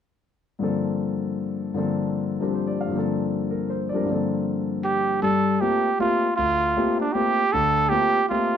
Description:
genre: jazz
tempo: 156 BPM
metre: 3/4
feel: swing 64% on 8ths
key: G minor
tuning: A4 = 439 Hz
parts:
  - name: warm concert grand piano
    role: accompaniment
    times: 0.6-8.6 s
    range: D2 to F5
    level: -23 LUFS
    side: left 3 dB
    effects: none
  - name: breathy trumpet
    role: melody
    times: 4.8-8.6 s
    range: D4 to A4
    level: -21 LUFS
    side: right 3 dB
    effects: plate reverb
room: light reverb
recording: dark, warm production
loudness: -21 LUFS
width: side -8 dB against mid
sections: 0.6-5.2 A section; 5.2-8.6 B section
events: none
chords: 0.6 Gm11

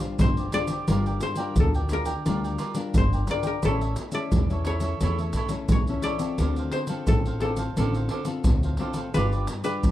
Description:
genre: samba and choro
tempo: 87 BPM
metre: 4/4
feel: straight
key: D minor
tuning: A4 = 442 Hz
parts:
  - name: koto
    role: melody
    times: 0.0-9.9 s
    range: G4 to D5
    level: -30 LUFS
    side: left 3 dB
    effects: none
  - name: cavaquinho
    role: accompaniment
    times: 0.0-9.9 s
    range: D4 to G5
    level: -34 LUFS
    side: right 5 dB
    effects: none
  - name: nylon-string guitar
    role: accompaniment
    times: 0.0-9.9 s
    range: A2 to C5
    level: -32 LUFS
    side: left 4 dB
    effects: none
  - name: upright bass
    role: bass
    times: 0.2-9.9 s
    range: G1 to E2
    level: -27 LUFS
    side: equal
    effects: none
  - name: maracas, surdo and pandeiro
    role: percussion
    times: 0.2-9.9 s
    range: none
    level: -26 LUFS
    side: equal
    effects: none
room: small room ambience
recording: dry, close 1970s-style studio recording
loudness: -23 LUFS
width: side -14 dB against mid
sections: 0.0-9.9 A section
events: none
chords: 0.0 G7sus4; 0.9 Gm7; 3.6 A; 6.4 Dm7; 9.2 G7

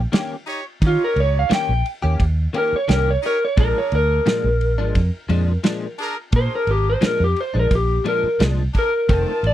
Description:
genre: straight-eighth soul blues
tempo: 87 BPM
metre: 4/4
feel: straight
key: Bb mixolydian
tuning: A4 = 441 Hz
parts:
  - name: vintage muted fingered electric bass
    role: bass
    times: 0.0-9.5 s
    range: F1 to Eb3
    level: -19 LUFS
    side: right 1 dB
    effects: none
  - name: direct-recorded clean electric guitar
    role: stabs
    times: 0.1-9.3 s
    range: F2 to G4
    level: -25 LUFS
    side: left 4 dB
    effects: ensemble chorus
  - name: warm soul drum kit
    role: drums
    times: 0.1-9.5 s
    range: kick drum, ride cymbal, snare drum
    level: -19 LUFS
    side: right 1 dB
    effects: none
  - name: bright horn section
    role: sustained chords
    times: 0.5-9.5 s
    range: D4 to A5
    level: -29 LUFS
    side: right 1 dB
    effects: none
  - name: electric slide guitar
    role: melody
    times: 0.9-9.5 s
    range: F4 to G5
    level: -20 LUFS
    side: equal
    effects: none
room: little or no reverb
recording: dry, close 1970s-style studio recording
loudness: -17 LUFS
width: side -12 dB against mid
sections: 0.0-9.5 A section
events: electric slide guitar solo 0.0-9.5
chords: 0.0 Eb7; 3.6 Bb7

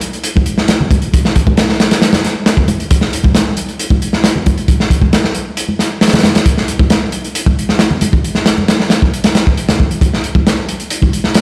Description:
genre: breakbeat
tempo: 135 BPM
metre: 4/4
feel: straight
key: none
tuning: none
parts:
  - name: crunchy breakbeat drum kit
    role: drums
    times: 0.0-11.4 s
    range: hi-hat, kick drum, snare drum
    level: -13 LUFS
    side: equal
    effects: none
  - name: congas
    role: percussion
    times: 0.4-11.1 s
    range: none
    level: -22 LUFS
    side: equal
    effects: none
room: light reverb, studio reverb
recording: played on a big sound system in a bare room, stone room reverb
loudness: -13 LUFS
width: mono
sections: 0.0-11.4 A section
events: none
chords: none

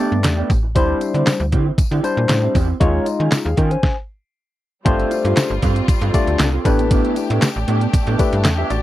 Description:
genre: early-eighties boogie funk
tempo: 117 BPM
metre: 4/4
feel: straight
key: unclear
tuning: A4 = 439 Hz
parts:
  - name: barky tine electric piano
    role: accompaniment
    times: 0.0-8.8 s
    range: G3 to Ab5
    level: -20 LUFS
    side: left 4 dB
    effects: overdrive, phaser
  - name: electric guitar through a small old amp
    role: riff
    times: 0.0-8.7 s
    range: B3 to A4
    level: -25 LUFS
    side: right 7 dB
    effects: analog chorus
  - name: slap-like FM bass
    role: bass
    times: 0.1-8.8 s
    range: G1 to Eb3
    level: -19 LUFS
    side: equal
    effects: none
  - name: detuned 8-bit digital drum machine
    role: drums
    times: 0.2-8.8 s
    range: handclaps, hi-hat, kick drum, snare drum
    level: -18 LUFS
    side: equal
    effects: none
  - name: tambourine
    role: percussion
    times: 0.2-8.8 s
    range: none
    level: -37 LUFS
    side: left 13 dB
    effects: none
  - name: clear studio string section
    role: sustained chords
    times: 4.9-8.8 s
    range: G3 to G4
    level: -27 LUFS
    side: left 1 dB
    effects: none
room: little or no reverb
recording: dry, close 1970s-style studio recording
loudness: -15 LUFS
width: side -14 dB against mid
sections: 0.0-4.9 A section; 4.9-8.8 B section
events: stop 3.8-4.9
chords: 0.0 A9sus4; 0.8 D9sus4; 2.8 Eb9sus4; 4.9 G9sus4; 6.7 A9sus4

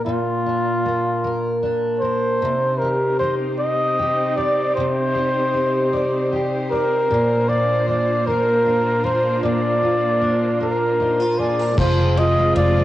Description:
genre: six-eight pop ballad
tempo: 51 BPM (dotted quarters)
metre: 6/8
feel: straight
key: unclear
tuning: A4 = 441 Hz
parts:
  - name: warm flugelhorn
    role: melody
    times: 0.0-12.8 s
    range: F4 to Eb5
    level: -20 LUFS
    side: equal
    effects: cassette tape
  - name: picked steel-string acoustic guitar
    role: accompaniment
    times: 0.0-12.8 s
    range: Bb2 to D5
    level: -22 LUFS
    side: equal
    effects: double-tracked left and right, cassette tape
  - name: warm studio string section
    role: sustained chords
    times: 2.4-12.8 s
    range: C3 to C5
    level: -26 LUFS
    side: equal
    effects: cassette tape
  - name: vintage muted fingered electric bass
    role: bass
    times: 11.8-12.8 s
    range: F1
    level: -18 LUFS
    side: equal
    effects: none
  - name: modern studio drum kit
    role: drums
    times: 11.8-12.7 s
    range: crash cymbal, kick drum, ride cymbal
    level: -27 LUFS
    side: equal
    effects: cassette tape
room: moderate spring reverb, RT60 2.6 s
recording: home recording on cassette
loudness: -17 LUFS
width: side -14 dB against mid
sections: 0.0-11.8 A section; 11.8-12.8 B section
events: none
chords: 0.0 Bb; 2.4 Cmadd9; 7.1 Bb; 11.8 Fm

